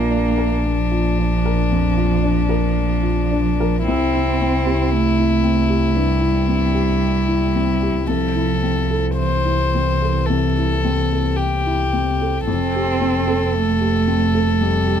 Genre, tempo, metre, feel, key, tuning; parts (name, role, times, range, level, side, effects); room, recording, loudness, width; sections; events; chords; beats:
neoclassical piano and strings; 56 BPM; 4/4; rubato; A4 = 441 Hz
rich violin; melody; 0.0-15.0 s; D4 to C5; -22 LUFS; left 6 dB
dark cello; second line; 0.0-15.0 s; E3 to C4; -22 LUFS; right 8 dB; tape echo
dark upright piano; accompaniment; 0.0-15.0 s; Bb1 to Bb4; -23 LUFS; left 3 dB
dark double bass; bass; 0.0-15.0 s; F1 to C2; -21 LUFS; equal
little or no reverb; close, detailed microphones; -16 LUFS; side -8 dB against mid
0.0-15.0 A section
0.0 Bb; 3.9 C; 8.1 Am/C; 12.5 Fadd9
0.66 1.72 2.77 | 3.88 4.93 5.96 7.00 | 8.07 9.17 10.27 11.37 | 12.47 13.54 14.61